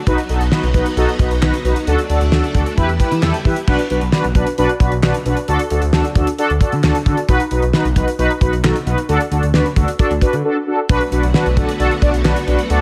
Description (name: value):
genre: synth-pop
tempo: 133 BPM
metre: 4/4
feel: straight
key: unclear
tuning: A4 = 439 Hz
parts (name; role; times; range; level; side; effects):
- string machine, violins; sustained chords; 0.0-3.7, 10.9-12.8 s; D3 to F#4; -27 LUFS; equal; ensemble chorus
- mellow synth brass; accompaniment; 0.1-12.8 s; D4 to D5; -20 LUFS; equal; chorus
- smooth gliding synth bass; bass; 0.1-12.8 s; B1 to E3; -21 LUFS; equal; none
- damped 70s drum kit; drums; 0.1-12.8 s; crash cymbal, handclaps, hi-hat, kick drum, snare drum; -20 LUFS; equal; gated reverb
room: light reverb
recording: none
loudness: -16 LUFS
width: mono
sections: 0.0-3.7 A section; 3.7-12.8 A section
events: break 10.4-10.9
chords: 0.1 B; 1.9 D; 2.8 Em; 3.7 Bm; 5.5 D; 7.3 B; 9.1 D; 10.9 Bm7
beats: | 0.07 0.52 0.97 1.42 | 1.87 2.32 2.77 3.23 | 3.68 4.13 4.58 5.03 | 5.48 5.93 6.38 6.83 | 7.29 7.74 8.19 8.64 | 9.09 9.54 9.99 10.44 | 10.89 11.35 11.80 12.25 | 12.70